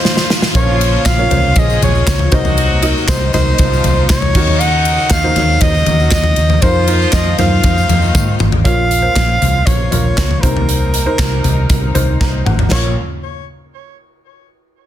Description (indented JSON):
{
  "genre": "piano-driven pop",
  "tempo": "118 BPM",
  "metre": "4/4",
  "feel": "straight",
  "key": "Bb minor",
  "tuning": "A4 = 441 Hz",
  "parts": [
    { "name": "breathy soprano saxophone", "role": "melody", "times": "0.0-13.0 s", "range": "Bb4 to Gb5", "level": "-18 LUFS", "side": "equal", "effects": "ping-pong delay" },
    { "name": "felt-muted upright piano", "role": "accompaniment", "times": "0.0-12.9 s", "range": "Bb1 to Bb5", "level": "-22 LUFS", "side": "equal", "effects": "none" },
    { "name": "warm studio string section", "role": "sustained chords", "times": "0.0-13.0 s", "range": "C3 to F4", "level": "-26 LUFS", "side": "left 1 dB", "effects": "none" },
    { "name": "modern studio drum kit", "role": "drums", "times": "0.1-12.8 s", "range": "crash cymbal, handclaps, hi-hat, kick drum, ride cymbal, snare drum, toms", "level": "-15 LUFS", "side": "equal", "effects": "none" },
    { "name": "muted French horn section", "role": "second line", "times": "0.5-8.4 s", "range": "Eb3 to Ab4", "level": "-24 LUFS", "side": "left 2 dB", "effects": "ping-pong delay" },
    { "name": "vintage muted fingered electric bass", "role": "bass", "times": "0.5-13.0 s", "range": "Ab1 to Ab2", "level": "-15 LUFS", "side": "equal", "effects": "none" },
    { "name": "tambourine", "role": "percussion", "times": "0.5-8.5 s", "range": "none", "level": "-34 LUFS", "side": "left 6 dB", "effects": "none" }
  ],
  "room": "light reverb, small room reverb",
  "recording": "dense, heavily limited modern master",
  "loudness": "-11 LUFS",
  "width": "side -11 dB against mid",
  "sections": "0.0-8.7 A section; 8.7-12.7 B section; 12.7-14.7 C section",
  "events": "drum fill 0.0-0.5, 8.1-8.7, 12.2-12.7; felt piano fill 12.0-12.7",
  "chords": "0.0 F7sus4; 0.5 Bbm; 2.3 Cm7b5; 4.3 Ebm7; 6.6 F7sus4; 8.7 Bbm; 10.4 Abadd9 (rootless); 12.7 Bbm",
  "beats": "0.04 | 0.55 1.05 1.56 2.06 | 2.57 3.08 3.58 4.09 | 4.60 5.10 5.61 6.12 | 6.62 7.13 7.64 8.14 | 8.65 9.16 9.67 10.18 | 10.68 11.19 11.70 12.21 | 12.72"
}